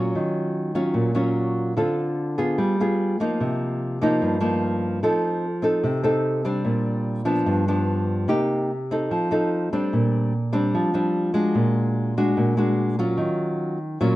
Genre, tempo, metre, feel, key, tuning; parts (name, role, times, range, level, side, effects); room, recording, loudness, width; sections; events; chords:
bossa nova; 147 BPM; 4/4; straight; Bb major; A4 = 440 Hz
nylon-string guitar; solo; 0.0-14.2 s; G2 to A4; -20 LUFS; equal
moderate echo chamber reverb, RT60 1.4 s; dark, warm production; -20 LUFS; side -16 dB against mid
0.0-9.9 A section; 9.9-14.2 A section
0.1 Ebm9; 1.8 Dm7; 2.6 G7b9; 3.4 Cm7; 5.0 F7; 6.7 Bb69; 7.5 G7; 8.3 Cm7; 9.1 F7; 9.9 Bb69; 11.6 Bb7alt; 13.2 Ebm9